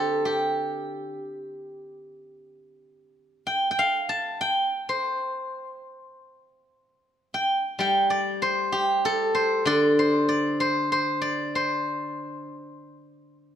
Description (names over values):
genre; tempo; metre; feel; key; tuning
chinese traditional, Chinese solo plucked strings; 64 BPM; 2/4; uneven beats, rubato; C zhi mode; A4 = 440 Hz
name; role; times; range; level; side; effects
steel-string zither; solo; 0.0-13.5 s; D3 to A5; -23 LUFS; equal; none
room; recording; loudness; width
light reverb; none; -22 LUFS; side -9 dB against mid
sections
0.0-13.6 A section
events
none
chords
none